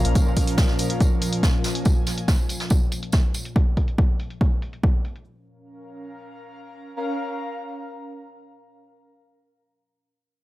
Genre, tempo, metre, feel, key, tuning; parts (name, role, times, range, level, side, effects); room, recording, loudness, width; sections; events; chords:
driving peak-time techno; 141 BPM; 4/4; straight; Bb minor; A4 = 442 Hz
deep dark ambient pad; drone; 0.0-1.9 s; Bb2 to F3; -29 LUFS; equal; chorus, built-in reverb, sidechain pumping
electronic hi-hat; drums; 0.0-5.2 s; -33 LUFS; equal; overdrive, sidechain pumping on toms, low-pass filter on toms, small room ambience, sidechain pumping on cymbals, low-pass filter on cymbals, sidechain pumping on hats, low-pass filter on hats, low-pass filter on snare
airy breathy pad; texture; 0.0-9.0 s; Db4 to Bb5; -32 LUFS; equal; chorus, sidechain pumping
electronic kick drum; drums; 0.2-4.9 s; -20 LUFS; equal; small room ambience
jazz brush drum kit; drums; 0.2-3.4 s; hi-hat, snare drum, tambourine; -32 LUFS; right 1 dB; high-pass filter on hats, small room ambience, high-pass filter on snare, high-pass filter on perc, high-pass filter on room
little or no reverb; dry, gritty hardware recording; -20 LUFS; side -17 dB against mid
0.0-5.3 A section; 5.3-8.7 B section
fade-out on analog synth pad 0.0-3.6
0.0 Bbm